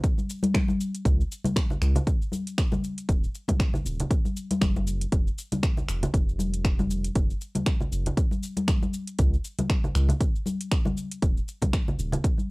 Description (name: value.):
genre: afro house.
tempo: 118 BPM.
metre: 4/4.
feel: swing 57% on 16ths.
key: unclear.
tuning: A4 = 435 Hz.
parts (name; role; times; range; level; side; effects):
electronic kick drum; drums; 0.0-12.4 s; none; -24 LUFS; equal; cassette tape.
house drum kit; drums; 0.0-12.5 s; finger snaps, hi-hat, shaker; -35 LUFS; equal; cassette tape.
congas; percussion; 0.2-12.5 s; none; -29 LUFS; left 1 dB; none.
round analog bass; bass; 1.1-12.2 s; Eb1 to Db2; -26 LUFS; equal; sidechain pumping.
room: little or no reverb.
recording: home recording on cassette.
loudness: -24 LUFS.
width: side -24 dB against mid.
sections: 0.0-12.5 A section.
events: none.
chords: none.